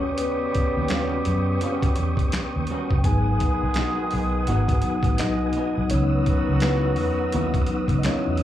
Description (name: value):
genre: R&B, neo-soul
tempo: 84 BPM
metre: 4/4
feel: swing 61% on 16ths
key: C# minor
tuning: A4 = 440 Hz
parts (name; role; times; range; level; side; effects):
- electric guitar through a small old amp; second line; 0.0-8.3 s; G3 to F#4; -32 LUFS; right 1 dB; plate reverb, slapback echo
- mellow tine electric piano; accompaniment; 0.0-8.4 s; D#3 to G#5; -26 LUFS; left 2 dB; fast stereo tremolo, plate reverb, slapback echo
- mellow tonewheel organ; sustained chords; 0.0-8.4 s; B4 to E6; -32 LUFS; equal; slow rotary speaker, chorus vibrato, plate reverb
- clear horn section; stabs; 0.0-8.4 s; C#3 to G#4; -32 LUFS; right 2 dB; plate reverb
- vintage muted fingered electric bass; bass; 0.0-8.4 s; F#1 to F#2; -24 LUFS; equal; none
- boom bap sampler-style drum kit; drums; 0.2-8.4 s; finger snaps, hi-hat, kick drum, snare drum; -25 LUFS; equal; none
room: light reverb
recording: live gig heard through the venue's PA, club reverb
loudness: -20 LUFS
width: side -12 dB against mid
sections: 0.0-8.4 A section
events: tine electric piano solo 0.0-8.4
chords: 0.0 D#7alt; 3.0 G#m7; 5.9 C#m11